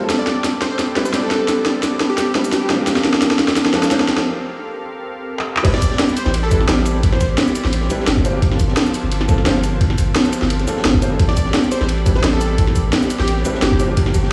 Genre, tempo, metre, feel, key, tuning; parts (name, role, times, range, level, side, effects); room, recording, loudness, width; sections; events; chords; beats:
liquid drum and bass; 173 BPM; 4/4; straight; A phrygian; A4 = 440 Hz
felt-muted upright piano; accompaniment; 0.0-14.3 s; F3 to D5; -25 LUFS; equal; dub echo
warm analog pad; sustained chords; 0.0-14.3 s; Bb3 to B5; -30 LUFS; equal; chorus, sidechain pumping
drum and bass drum kit; drums; 0.1-14.2 s; cabasa, crash cymbal, handclaps, hi-hat, snare drum; -21 LUFS; equal; small room ambience
plucky unison lead; melody; 0.2-2.7, 5.7-7.3, 11.3-13.8 s; G4 to D5; -27 LUFS; equal; vintage 12-bit sampler grit, digital delay
electronic kick drum; drums; 5.6-14.2 s; -20 LUFS; equal; small room ambience
crunchy breakbeat drum kit; drums; 5.7-14.3 s; ride cymbal, snare drum; -28 LUFS; equal; high-pass filter on cymbals, small room ambience, high-pass filter on snare, high-pass filter on room
warm sub bass; bass; 6.3-14.3 s; G1 to A1; -22 LUFS; equal
moderate lush hall reverb, RT60 2.0 s; played on a big sound system in a bare room, stone room reverb; -17 LUFS; mono
0.0-5.6 A section; 5.6-14.3 B section
build-up 0.0-5.6; drum fill 0.0-4.3, 5.4; break 4.3-5.6; drop 5.6-14.3
0.1 Am11; 2.7 Gm11; 5.6 Am11; 8.2 Gm11; 11.2 Am11; 13.8 Gm11
| 0.10 0.44 0.79 1.14 | 1.49 1.83 2.18 2.52 | 2.87 3.22 3.57 3.91 | 4.26 4.61 4.95 5.30 | 5.65 5.99 6.34 6.69 | 7.03 7.38 7.73 8.07 | 8.42 8.77 9.12 9.46 | 9.81 10.15 10.50 10.85 | 11.20 11.54 11.89 12.24 | 12.58 12.93 13.28 13.62 | 13.97 14.32